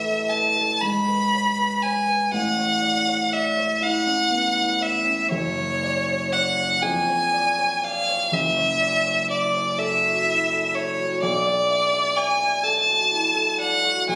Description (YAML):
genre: classical, romantic duo for violin and grand piano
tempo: 41 BPM (dotted quarters)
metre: 6/8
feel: uneven beats, rubato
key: unclear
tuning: A4 = 435 Hz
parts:
  - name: rich violin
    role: melody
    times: 0.0-14.2 s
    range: C#5 to B5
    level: -22 LUFS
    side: equal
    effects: none
  - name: dark grand piano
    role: accompaniment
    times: 0.0-14.2 s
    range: F#1 to E5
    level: -30 LUFS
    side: equal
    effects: none
room: moderate recital hall reverb, RT60 1.6 s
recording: recorded on a phone in the room, studio reverb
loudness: -22 LUFS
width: mono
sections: 0.0-14.2 A section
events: none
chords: 0.0 A5; 0.8 G#madd11; 2.3 A; 5.3 F#5; 6.8 C#/E#; 8.3 F#m7; 11.2 Bm7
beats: 0.82 | 2.33 3.82 | 5.32 6.83 | 8.33 9.78 | 11.22 12.64 | 14.09